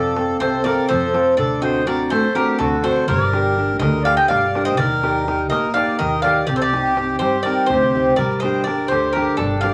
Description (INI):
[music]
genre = greek folk, Greek bouzouki band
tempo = 248 BPM (eighths)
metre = 7/8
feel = straight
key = unclear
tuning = A4 = 440 Hz
[part]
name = Greek bouzouki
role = melody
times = 0.0-9.7 s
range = A4 to G5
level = -23 LUFS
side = equal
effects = none
[part]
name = accordion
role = second line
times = 0.0-9.7 s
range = D4 to Eb5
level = -26 LUFS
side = equal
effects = none
[part]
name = fingerpicked steel-string acoustic guitar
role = accompaniment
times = 0.0-9.7 s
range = C3 to Bb4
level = -23 LUFS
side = equal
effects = none
[part]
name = upright bass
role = bass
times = 0.0-9.7 s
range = G1 to G2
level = -29 LUFS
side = equal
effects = none
[part]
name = darbuka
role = percussion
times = 0.2-9.7 s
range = none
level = -32 LUFS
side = equal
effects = none
[sound]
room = wet club reverb, RT60 0.6 s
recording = vinyl crackle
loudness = -18 LUFS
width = mono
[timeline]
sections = 0.0-9.7 A section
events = none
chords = 0.0 F; 1.4 D7; 3.1 Gm; 4.8 Eb; 6.5 Cm; 8.2 Gm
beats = 0.17 0.42 0.66 0.90 1.15 | 1.39 1.63 1.88 2.12 2.36 2.60 2.85 | 3.09 3.33 3.57 3.82 4.06 4.30 4.54 | 4.79 5.03 5.27 5.51 5.76 6.00 6.24 | 6.48 6.72 6.97 7.21 7.45 7.69 7.94 | 8.18 8.42 8.66 8.90 9.15 9.39 9.63